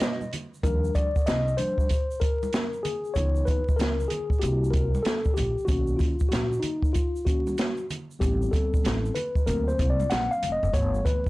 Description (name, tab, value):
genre	hip hop, jazz-hop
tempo	95 BPM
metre	4/4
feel	swing 65% on 16ths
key	unclear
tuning	A4 = 440 Hz
part	open jazz drum kit	drums	0.0-11.3 s	hi-hat, kick drum, snare drum	-26 LUFS	equal	none
part	congas and tube shaker	percussion	0.0-11.3 s	none	-39 LUFS	right 2 dB	none
part	mellow tine electric piano	accompaniment	0.6-11.3 s	D#3 to F#5	-28 LUFS	left 2 dB	medium stereo tremolo, plate reverb
part	upright bass	bass	0.6-11.0 s	E#1 to Eb2	-28 LUFS	equal	tube saturation
room	light reverb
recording	blown-out, overdriven recording, vinyl crackle, overdrive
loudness	-23 LUFS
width	side -19 dB against mid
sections	0.6-11.3 A section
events	break 0.0-0.6; tine electric piano solo 0.6-11.3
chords	0.0 N.C.; 0.6 Ebmaj9; 3.2 Dbm9; 4.4 C7#11; 5.7 Bmaj7 (rootless); 8.2 Am9; 9.5 D7alt; 10.7 G69